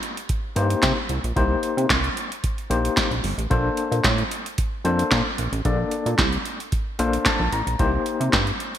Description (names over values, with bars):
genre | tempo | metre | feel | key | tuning
early-eighties boogie funk | 112 BPM | 4/4 | straight | C dorian | A4 = 444 Hz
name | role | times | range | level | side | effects
electro analog drum machine | drums | 0.0-8.8 s | handclaps, hi-hat, kick drum, snare drum | -23 LUFS | right 1 dB | gated reverb
overdriven tine electric piano | accompaniment | 0.6-8.3 s | Bb3 to Bb5 | -26 LUFS | left 4 dB | fast tremolo
chorused synth bass | bass | 0.6-8.5 s | G1 to C3 | -23 LUFS | equal | none
room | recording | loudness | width
light reverb | bright 1980s-style digital production | -20 LUFS | side -10 dB against mid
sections
0.0-8.8 A section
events
tine electric piano fill 6.7-7.8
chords
0.0 Cm7; 3.5 Bbmaj9; 7.8 Cm7